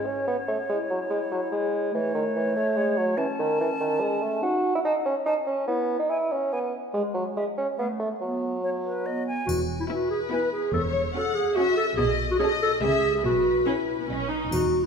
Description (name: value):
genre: cinematic, playful, whimsical film cue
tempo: 144 BPM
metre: 3/4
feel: straight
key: E major from 4.4 s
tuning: A4 = 435 Hz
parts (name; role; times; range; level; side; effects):
- dark clarinet; second line; 0.0-14.9 s; G#3 to C#5; -27 LUFS; equal; none
- silver concert flute; second line; 0.0-9.5 s; B4 to A5; -32 LUFS; left 1 dB; none
- mellow bassoon; accompaniment; 0.0-9.3 s; D#3 to F#4; -26 LUFS; right 1 dB; none
- rich studio cello section; bass; 9.5-14.9 s; E2 to C#3; -35 LUFS; right 2 dB; none
- warm studio double bass section; bass; 9.5-14.9 s; E1 to C#2; -34 LUFS; right 1 dB; none
- triangle; percussion; 9.5-10.3, 14.5-14.9 s; none; -40 LUFS; left 5 dB; none
- rich studio violin section; melody; 9.9-14.4 s; D#5 to G#5; -42 LUFS; left 4 dB; none
- rich studio violin section; second line; 9.9-14.3 s; B4 to F#5; -30 LUFS; left 6 dB; none
- rich studio viola section; accompaniment; 9.9-14.5 s; G#3 to A4; -32 LUFS; right 1 dB; none
room: wet scoring stage reverb, RT60 2.1 s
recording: minimal, uncompressed stereo recording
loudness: -23 LUFS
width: side -6 dB against mid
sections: 0.0-9.5 A section; 9.5-14.9 B section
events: none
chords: 0.0 N.C.; 0.7 C#m; 1.9 A; 4.4 F#5; 5.7 E5/B; 6.9 N.C.; 8.2 B5/F#; 9.5 E; 10.7 F#5/E; 12.0 B9; 12.8 C#m; 13.2 E5/B; 14.1 B